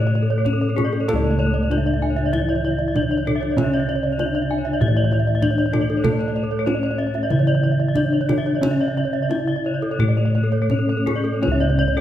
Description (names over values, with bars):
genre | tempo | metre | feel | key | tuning
Balinese gamelan | 82-97 BPM | 4/4 | straight | unclear | A4 = 439 Hz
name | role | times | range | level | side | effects
gamelan-type bronze metallophone | melody | 0.0-12.0 s | A3 to E4 | -24 LUFS | left 2 dB | none
gamelan-type bronze metallophone | accompaniment | 0.0-12.0 s | C#3 to A3 | -30 LUFS | right 4 dB | none
gamelan-type bronze metallophone | arpeggios | 0.0-12.0 s | G#4 to G#5 | -27 LUFS | left 4 dB | none
gamelan-type bossed gongs | bass | 0.0-12.0 s | C#2 to A4 | -21 LUFS | left 1 dB | none
kendang | percussion | 0.0-12.0 s | none | -28 LUFS | right 3 dB | none
gamelan-type bronze metallophone | arpeggios | 0.1-12.0 s | A4 to E5 | -28 LUFS | right 7 dB | none
room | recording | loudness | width
moderate scoring stage reverb, RT60 1.9 s | none | -18 LUFS | side -11 dB against mid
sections
0.0-11.4 A section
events
none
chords
none